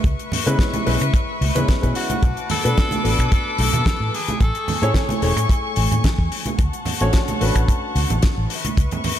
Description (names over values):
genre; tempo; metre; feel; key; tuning
nu-disco, nu disco; 110 BPM; 4/4; swing 53% on 16ths; unclear; A4 = 436 Hz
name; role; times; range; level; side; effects
dark studio string section; sustained chords; 0.0-9.2 s; A3 to D6; -27 LUFS; left 3 dB; sidechain pumping
fingered electric bass with an envelope filter; bass; 0.0-8.9 s; E1 to C#3; -21 LUFS; equal; tube saturation
damped 70s drum kit; drums; 0.0-9.2 s; finger snaps, hi-hat, snare drum; -26 LUFS; left 3 dB; studio reverb
kick drum; drums; 0.0-8.9 s; none; -18 LUFS; equal; studio reverb
congas; percussion; 0.3-9.2 s; none; -28 LUFS; right 3 dB; none
dark grand piano; accompaniment; 0.5-8.5 s; G#3 to C#5; -25 LUFS; equal; tape echo
breathy tenor saxophone; melody; 2.0-4.9 s; F#4 to A4; -26 LUFS; left 1 dB; ping-pong delay
room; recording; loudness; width
light reverb, small room ambience; none; -17 LUFS; side -11 dB against mid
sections
0.0-9.2 A section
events
none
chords
0.0 C#m7; 2.2 Bm7; 4.4 Amaj7; 6.6 Dmaj7; 8.5 C#m7